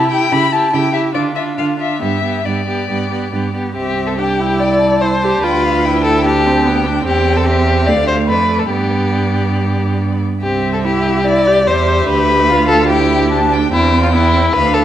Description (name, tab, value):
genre	quick classical-period movement for string quartet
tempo	145 BPM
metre	4/4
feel	rubato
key	C major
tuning	A4 = 440 Hz
part	rich violin	melody	0.0-14.8 s	D5 to B5	-21 LUFS	left 5 dB	none
part	warm violin	second line	0.0-14.8 s	E4 to D5	-16 LUFS	left 2 dB	none
part	rich viola	accompaniment	0.0-14.8 s	A3 to G4	-19 LUFS	right 2 dB	none
part	clear cello	bass	0.0-14.8 s	C2 to D3	-17 LUFS	right 3 dB	none
room	moderate scoring stage reverb, RT60 1.9 s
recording	none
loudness	-12 LUFS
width	side -11 dB against mid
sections	0.0-3.8 A section; 3.8-14.8 B section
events	none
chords	0.3 C#m7b5; 1.1 Dm; 2.0 G; 3.8 C; 5.4 G7/D; 7.1 C/E; 7.9 Dm; 8.7 G; 10.4 C; 12.1 G7/D; 13.7 C/E